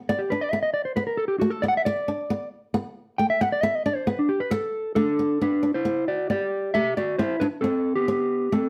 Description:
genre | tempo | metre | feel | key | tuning
highlife | 135 BPM | 4/4 | straight | G major | A4 = 441 Hz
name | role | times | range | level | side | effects
mellow electric guitar | melody | 0.1-8.7 s | B3 to G5 | -26 LUFS | equal | slapback echo
flamenco guitar | accompaniment | 0.1-8.6 s | A3 to D4 | -29 LUFS | equal | none
room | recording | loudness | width
moderate studio reverb, RT60 0.8 s | none | -25 LUFS | mono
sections
0.0-5.4 A section; 5.4-8.7 B section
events
clean electric guitar solo 0.0-5.4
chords
0.1 Bm; 1.0 Asus2; 1.9 Bm; 2.7 Asus2; 3.6 Bm; 4.5 D5; 5.4 G; 7.2 C5

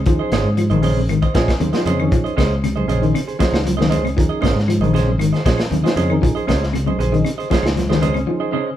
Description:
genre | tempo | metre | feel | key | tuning
afrobeat | 117 BPM | 4/4 | straight | Bb minor | A4 = 440 Hz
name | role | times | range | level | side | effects
fingered electric bass | bass | 0.0-8.2 s | Ab1 to Bb2 | -20 LUFS | equal | none
mellow reed electric piano | accompaniment | 0.1-8.6 s | Db4 to Ab5 | -26 LUFS | right 2 dB | fast tremolo
electric guitar at the edge of break-up | arpeggios | 0.1-8.7 s | Db3 to F3 | -21 LUFS | left 3 dB | none
crunchy breakbeat drum kit | drums | 0.1-8.3 s | hi-hat, kick drum, snare drum | -21 LUFS | equal | none
congas | percussion | 0.1-8.2 s | none | -27 LUFS | right 2 dB | none
semi-hollow electric guitar | stabs | 0.2-8.7 s | Db4 to Eb5 | -23 LUFS | right 4 dB | none
claves | percussion | 0.3-8.3 s | none | -36 LUFS | left 4 dB | none
room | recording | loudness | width
moderate large studio reverb, RT60 0.9 s | band playing live in one room | -15 LUFS | side -12 dB against mid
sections
0.0-8.8 A section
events
reed electric piano fill 1.1-2.1; break 8.3-8.8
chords
0.0 Bbm11

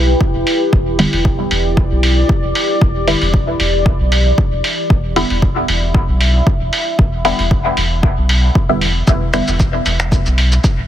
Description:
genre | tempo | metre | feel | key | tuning
dub techno | 115 BPM | 4/4 | swing 54% on 16ths | E minor | A4 = 444 Hz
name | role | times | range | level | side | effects
deep dark ambient pad | sustained chords | 0.0-9.1 s | E4 to E5 | -20 LUFS | equal | chorus, built-in reverb, sidechain pumping
soft dub sub bass | bass | 0.0-10.9 s | E1 to B1 | -17 LUFS | equal | tube saturation, sidechain pumping
electronic kick drum | drums | 0.2-10.8 s | none | -14 LUFS | equal | none
lo-fi sampler-style drum kit | drums | 0.5-10.8 s | cabasa, finger snaps, hi-hat | -19 LUFS | equal | dub echo
filtered dub chord stab | stabs | 1.0-9.5 s | D3 to E4 | -20 LUFS | equal | phaser, sidechain pumping, dub echo
room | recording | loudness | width
digital ambience | heavily compressed radio sound, multiband compression | -12 LUFS | side -11 dB against mid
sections
0.0-9.1 A section; 9.1-10.9 A section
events
none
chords
0.0 Em7; 9.1 E5

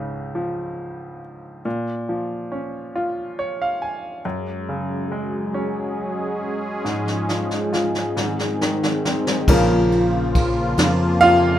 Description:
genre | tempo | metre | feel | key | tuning
six-eight pop ballad | 46 BPM (dotted quarters) | 6/8 | straight | unclear | A4 = 440 Hz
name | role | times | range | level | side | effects
bright grand piano | accompaniment | 0.0-11.6 s | Db2 to Ab5 | -22 LUFS | equal | none
sweeping resonant pad | sustained chords | 4.2-11.6 s | Ab2 to Ab4 | -23 LUFS | left 1 dB | chorus
vintage brush drum kit | drums | 6.9-11.4 s | crash cymbal, kick drum, ride cymbal, snare drum | -23 LUFS | equal | none
fingered electric bass | bass | 9.5-11.6 s | Bb1 to F2 | -22 LUFS | equal | none
room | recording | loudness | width
wet small room reverb, RT60 0.5 s | rough home demo mix | -19 LUFS | side -11 dB against mid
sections
0.0-9.5 A section; 9.5-11.6 B section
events
grand piano fill 3.0-4.2; drum fill 6.8-9.5; grand piano solo 9.5-11.6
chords
0.0 Db; 1.7 Bbm; 4.2 Gbsus2; 6.8 Db/Ab; 8.2 Ab; 9.5 Bbm

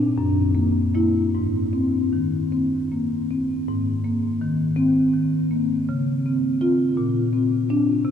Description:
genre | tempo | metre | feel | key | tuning
classical, contemporary piece for solo marimba | 50-56 BPM (dotted quarters) | 6/8 | rubato | Ab major | A4 = 440 Hz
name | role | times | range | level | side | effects
marimba with soft mallets | solo | 0.0-8.1 s | Gb2 to F4 | -19 LUFS | left 1 dB | none
room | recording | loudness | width
wet huge ambient reverb, RT60 7.6 s | in a vast, echoing space | -19 LUFS | side -8 dB against mid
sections
0.0-3.7 A section; 3.7-8.1 B section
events
none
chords
0.2 Gb7; 1.3 Abadd9; 5.9 Dbmaj7; 7.0 Bbadd9

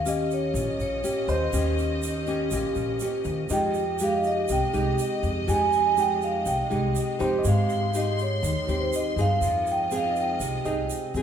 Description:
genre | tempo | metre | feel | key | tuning
bossa nova | 122 BPM | 4/4 | straight | F minor | A4 = 438 Hz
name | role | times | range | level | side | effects
vibraphone with soft mallets | melody | 0.0-11.1 s | C5 to Ab5 | -27 LUFS | right 2 dB | none
nylon-string guitar | accompaniment | 0.0-11.2 s | Bb2 to Ab4 | -28 LUFS | equal | none
warm studio string section | sustained chords | 0.0-11.2 s | Ab3 to C6 | -34 LUFS | left 1 dB | none
upright bass | bass | 0.0-11.2 s | Bb1 to Ab2 | -29 LUFS | left 1 dB | none
tube shaker | percussion | 0.1-11.2 s | none | -40 LUFS | right 5 dB | none
warm grand piano | accompaniment | 1.3-11.2 s | C5 to Eb5 | -36 LUFS | right 2 dB | none
room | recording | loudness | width
wet large studio reverb, RT60 1.4 s | band playing live in one room | -23 LUFS | side -8 dB against mid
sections
0.0-11.2 A section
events
none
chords
0.0 Eb7; 3.5 Fm9; 7.4 Abmaj7; 9.4 Fm7

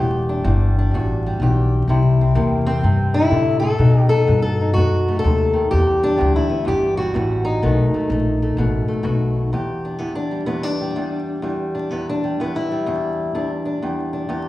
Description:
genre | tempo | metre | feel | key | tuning
acoustic country blues, solo or duo | 126 BPM | 4/4 | swing 65% on 8ths | E minor | A4 = 436 Hz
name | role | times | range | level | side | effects
fingerpicked old ladder-braced acoustic guitar | melody | 0.0-14.5 s | E2 to A4 | -19 LUFS | left 1 dB | none
upright bass | bass | 0.0-9.5 s | E1 to B2 | -18 LUFS | left 1 dB | none
room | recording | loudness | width
wet large studio reverb, RT60 1.5 s | band playing live in one room, vinyl crackle, small room reverb | -17 LUFS | side -16 dB against mid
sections
0.0-9.5 A section; 9.5-14.5 B section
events
steel-string acoustic guitar solo 9.5-14.5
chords
0.0 Em7; 1.9 C7; 3.8 B7; 5.7 Em7; 7.6 B7; 9.5 Em7

